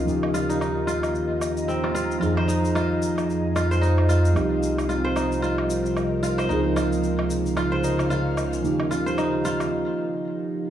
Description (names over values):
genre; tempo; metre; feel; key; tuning
organic downtempo; 112 BPM; 4/4; swing 58% on 16ths; unclear; A4 = 440 Hz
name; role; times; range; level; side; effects
muted felt-like synth keys; accompaniment; 0.0-10.7 s; F3 to Ab4; -27 LUFS; right 2 dB; chorus, tape echo
ethereal airy pad; sustained chords; 0.0-9.7 s; C3 to Bb5; -31 LUFS; equal; ensemble chorus, built-in reverb, phaser
kora; arpeggios; 0.0-10.7 s; C4 to C5; -25 LUFS; equal; low-pass filter, tape echo
smooth synth bass; bass; 0.0-9.7 s; C2 to F2; -26 LUFS; equal; tube saturation
shaker and woodblock; drums; 0.1-9.7 s; none; -34 LUFS; equal; overdrive
room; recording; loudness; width
moderate echo chamber reverb, RT60 2.2 s; studio ambience; -21 LUFS; side -10 dB against mid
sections
0.0-10.7 A section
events
break 9.7-10.7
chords
0.1 Eb; 2.2 Fm7; 4.4 Cm7; 6.5 Db6; 8.6 Eb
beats
| 0.07 0.60 1.14 1.68 | 2.21 2.75 3.28 3.82 | 4.35 4.89 5.43 5.96 | 6.50 7.03 7.57 8.10 | 8.64 9.18 9.71 10.25